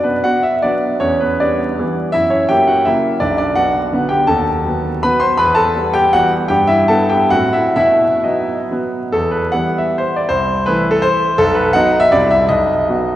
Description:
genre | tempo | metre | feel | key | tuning
classical, romantic triple-time dance for piano with dotted rhythms | 122-182 BPM | 3/4 | rubato | B minor, E minor from 4.3 s | A4 = 441 Hz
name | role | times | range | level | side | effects
warm grand piano | solo | 0.0-13.2 s | B1 to C6 | -12 LUFS | equal | none
room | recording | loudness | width
wet church reverb, RT60 3.0 s | recorded in a church or concert hall, vinyl crackle, nothing above 10.7 kHz | -12 LUFS | side -13 dB against mid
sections
0.0-9.1 A section; 9.1-13.2 B section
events
none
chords
0.0 Bm; 1.0 Em7; 2.1 F#7; 3.2 Bm; 4.3 B7/D#; 5.4 Em; 6.5 Em/G; 7.3 F#dim/A; 7.8 B; 9.1 Em; 10.3 Am/C; 11.4 B; 12.1 C; 12.5 B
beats
0.25 0.63 | 1.01 1.40 1.78 | 2.13 2.50 2.87 | 3.22 3.56 3.93 | 4.28 4.65 5.03 | 5.39 5.76 6.14 | 6.50 6.90 7.31 | 7.77 8.25 8.71 | 9.14 9.53 9.92 | 10.29 10.67 11.04 | 11.39 11.74 12.12 | 12.49 12.90

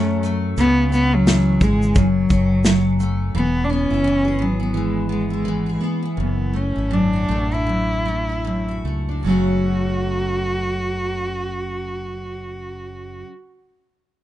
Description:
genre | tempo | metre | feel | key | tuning
acoustic pop | 73-87 BPM | 4/4 | swing 60% on 16ths | F# minor | A4 = 440 Hz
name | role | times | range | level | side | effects
warm cello | melody | 0.0-13.2 s | F#3 to F#4 | -22 LUFS | equal | none
picked steel-string acoustic guitar | accompaniment | 0.0-13.3 s | F#2 to G#4 | -23 LUFS | equal | double-tracked left and right
mellow fretless electric bass | bass | 0.0-13.2 s | E1 to F#2 | -23 LUFS | equal | ensemble chorus
natural country drum kit | drums | 0.2-3.2 s | kick drum, shaker, snare drum | -19 LUFS | equal | none
room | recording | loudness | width
light reverb | rough home demo mix, nothing above 11.0 kHz | -17 LUFS | side -13 dB against mid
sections
0.0-3.3 A section; 3.3-9.2 B section; 9.2-12.5 C section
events
slowing down 3.3-9.2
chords
0.0 F#madd9; 0.6 C#m; 2.0 F#m; 3.3 E; 6.2 Dadd9/F#; 9.2 F#m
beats
| 0.57 1.27 1.96 2.65 | 3.34 4.04 4.74 5.45 | 6.17 6.91 7.67 8.45 | 9.25 10.07 10.88 11.70

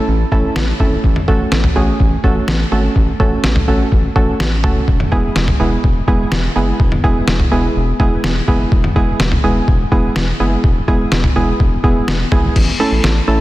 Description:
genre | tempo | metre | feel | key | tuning
synth-pop | 125 BPM | 4/4 | straight | unclear | A4 = 440 Hz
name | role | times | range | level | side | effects
round analog bass | bass | 0.1-13.4 s | E1 to A1 | -18 LUFS | equal | none
warbly dusty pluck | accompaniment | 0.3-13.4 s | G#3 to A4 | -17 LUFS | right 2 dB | chorus
trip hop sampler-style drum kit | drums | 0.3-13.2 s | crash cymbal, kick drum, snare drum, toms | -15 LUFS | equal | none
room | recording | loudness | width
light reverb | dense, heavily limited modern master | -12 LUFS | side -16 dB against mid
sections
0.0-12.6 A section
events
none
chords
0.0 A; 1.0 F#m; 4.9 E; 12.6 A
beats
0.08 0.56 | 1.04 1.52 2.00 2.48 | 2.96 3.44 3.92 4.40 | 4.88 5.36 5.84 6.32 | 6.80 7.28 7.76 8.24 | 8.72 9.20 9.68 10.16 | 10.64 11.12 11.60 12.08 | 12.56 13.04

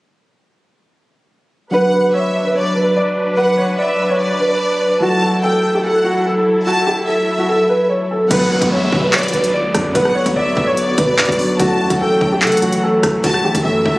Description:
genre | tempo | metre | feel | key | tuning
hip hop, drill | 146 BPM | 4/4 | half-time | B minor | A4 = 440 Hz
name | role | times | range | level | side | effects
dark baby grand piano | melody | 1.7-14.0 s | F#4 to D5 | -16 LUFS | equal | none
rich studio violin section | second line | 1.7-14.0 s | D5 to A5 | -22 LUFS | equal | tape echo
soft electric-piano-like synth keys | accompaniment | 1.7-14.0 s | F#3 to C#5 | -22 LUFS | equal | chorus
muted studio string section | sustained chords | 1.7-14.0 s | D3 to B4 | -21 LUFS | equal | none
hard-hitting 808-style bass | bass | 8.3-14.0 s | F#1 to C#3 | -25 LUFS | equal | none
drill drum kit | drums | 8.3-14.0 s | crash cymbal, handclaps, hi-hat, kick drum, rim click | -18 LUFS | equal | none
downlifter | sound effects | 8.3-11.6 s | none | -24 LUFS | equal | none
room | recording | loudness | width
light reverb, digital ambience | recorded on a phone in the room, studio reverb | -13 LUFS | side -20 dB against mid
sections
1.7-8.3 A section; 8.3-14.0 B section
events
none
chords
1.7 Bm; 5.0 F#m7; 8.3 Bm; 11.6 F#m7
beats
| 1.73 2.14 2.55 2.96 | 3.38 3.79 4.20 4.61 | 5.02 5.43 5.84 6.25 | 6.66 7.07 7.49 7.90 | 8.31 8.72 9.13 9.54 | 9.95 10.36 10.77 11.18 | 11.60 12.01 12.42 12.83 | 13.24 13.65

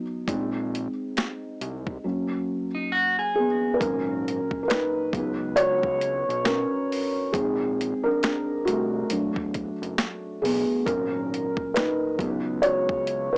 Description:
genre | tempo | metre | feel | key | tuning
lo-fi hip hop | 68 BPM | 4/4 | swing 60% on 16ths | unclear | A4 = 437 Hz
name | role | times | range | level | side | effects
felt-muted upright piano | accompaniment | 0.0-13.4 s | A#2 to C#5 | -24 LUFS | equal | cassette tape
fat analog bass | bass | 0.3-13.4 s | E1 to C#2 | -34 LUFS | equal | tube saturation
boom bap sampler-style drum kit | drums | 0.3-13.3 s | finger snaps, hi-hat, kick drum, snare drum | -29 LUFS | equal | vintage 12-bit sampler grit
clean electric guitar | second line | 2.7-3.8 s | D#4 to G#4 | -25 LUFS | equal | analog delay
room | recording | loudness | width
moderate small room reverb, RT60 0.5 s | dry, gritty hardware recording, small speaker sound | -23 LUFS | side -31 dB against mid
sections
0.0-3.8 A section; 3.8-13.4 B section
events
felt piano solo 0.0-3.8, 3.8-13.4; drums muted 2.0-3.8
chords
0.3 A#9sus4; 2.0 F#add9; 3.8 G#9sus4; 5.1 C#9sus4; 7.3 A#9sus4; 9.1 E9sus4; 10.9 G#9sus4; 12.2 C#9sus4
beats
| 0.28 1.16 2.04 2.92 | 3.81 4.69 5.57 6.45 | 7.33 8.22 9.10 9.98 | 10.87 11.75 12.63

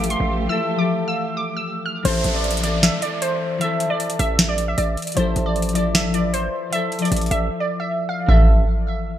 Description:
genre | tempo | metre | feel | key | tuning
hip hop, trap | 154 BPM | 4/4 | half-time | A minor | A4 = 445 Hz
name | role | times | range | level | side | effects
glassy wavetable pluck | melody | 0.0-8.5 s | C5 to F6 | -24 LUFS | right 2 dB | chorus, low-pass filter, digital delay
hollow clarinet-like synth lead | second line | 0.0-1.3 s | E5 to F5 | -30 LUFS | right 4 dB | chorus, digital delay
concert harp | accompaniment | 0.0-8.5 s | E3 to B4 | -25 LUFS | left 5 dB | low-pass filter
dark studio string section | sustained chords | 0.0-2.0 s | A3 to A4 | -30 LUFS | right 3 dB | none
hard-hitting 808-style bass | bass | 0.0-8.6 s | A1 | -23 LUFS | equal | none
booming analog drum machine | drums | 0.0-8.4 s | hi-hat, kick drum, snare drum | -19 LUFS | equal | gated reverb
downlifter | sound effects | 2.1-5.2 s | none | -30 LUFS | right 1 dB | none
room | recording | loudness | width
light reverb, digital ambience | bright 1980s-style digital production | -18 LUFS | side -11 dB against mid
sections
0.0-2.1 A section; 2.1-8.3 B section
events
drums muted 0.5-2.1; break 7.5-8.3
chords
0.0 Fmaj7/A; 2.1 Am; 5.2 Fmaj7/A; 8.3 Am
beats
0.10 | 0.49 0.88 1.27 1.66 | 2.05 2.44 2.83 3.22 | 3.61 4.00 4.39 4.78 | 5.17 5.56 5.95 6.34 | 6.73 7.12 7.51 7.89 | 8.29

